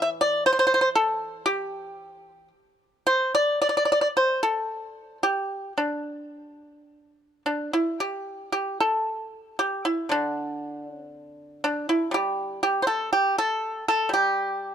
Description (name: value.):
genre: chinese traditional, Chinese solo plucked strings.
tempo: 51-61 BPM.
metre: 4/4.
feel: rubato.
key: D shang mode.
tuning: A4 = 440 Hz.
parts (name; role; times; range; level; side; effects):
pipa; solo; 0.0-14.7 s; A2 to E5; -22 LUFS; equal; none.
room: small room reverb.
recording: dry, close 1970s-style studio recording.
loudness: -22 LUFS.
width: side -8 dB against mid.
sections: 0.0-8.0 A section; 8.0-14.7 B section.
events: none.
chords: none.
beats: 0.45 1.47 2.52 | 3.60 4.67 5.74 6.87 | 7.99 9.06 10.11 11.13 | 12.13 13.12 14.11.